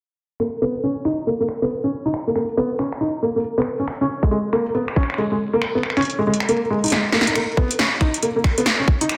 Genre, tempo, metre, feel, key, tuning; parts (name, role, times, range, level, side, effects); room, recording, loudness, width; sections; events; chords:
IDM; 138 BPM; 4/4; swing 62% on 16ths; B major; A4 = 440 Hz
felt-muted upright piano; arpeggios; 0.4-9.0 s; G#3 to D#4; -22 LUFS; equal; low-pass filter, digital delay
electro analog drum machine; drums; 0.4-9.2 s; finger snaps, hi-hat, snare drum; -25 LUFS; equal; soft clipping on snare, digital delay
electronic kick drum; drums; 4.2-9.0 s; -20 LUFS; equal
wet plate reverb, RT60 1.1 s; dense, heavily limited modern master, low-pass filter; -21 LUFS; mono
0.4-7.4 A section; 7.4-9.2 B section
filter sweep on felt piano 0.4-7.4; filter sweep 0.4-7.4; kick drops out 5.6-7.4; drum fill 6.9-7.4